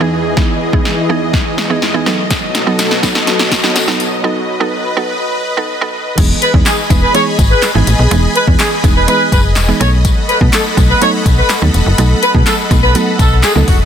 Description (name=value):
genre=dance-pop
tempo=124 BPM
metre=4/4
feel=straight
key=E major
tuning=A4 = 440 Hz
part: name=mallet-like synth pluck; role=accompaniment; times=0.0-13.8 s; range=E3 to B4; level=-18 LUFS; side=right 5 dB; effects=chorus, sidechain pumping
part: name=supersaw pad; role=sustained chords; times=0.0-13.9 s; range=E2 to B5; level=-18 LUFS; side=left 1 dB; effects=sidechain pumping
part: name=deep house drum kit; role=drums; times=0.4-13.8 s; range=crash cymbal, handclaps, hi-hat, kick drum, snare drum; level=-14 LUFS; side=left 1 dB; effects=none
part: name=tambourine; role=percussion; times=2.3-13.8 s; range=none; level=-25 LUFS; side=left 11 dB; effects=none
part: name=slap-like FM bass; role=bass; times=6.2-13.8 s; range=E1 to B2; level=-12 LUFS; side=left 1 dB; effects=sidechain pumping
part: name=warm horn section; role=melody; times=6.4-13.8 s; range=F#4 to C#5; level=-15 LUFS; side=equal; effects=sidechain pumping, ping-pong delay
room=light reverb, digital ambience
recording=dense, heavily limited modern master, high-pass filter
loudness=-10 LUFS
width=side -9 dB against mid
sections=0.0-6.2 A section; 6.2-13.9 B section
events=build-up 0.0-6.2; drum fill 0.0-4.2; filter sweep 0.0-6.2; break 4.2-6.2; drop 6.2-13.9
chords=0.0 Emaj7; 2.1 B7; 6.2 Emaj7; 9.8 B7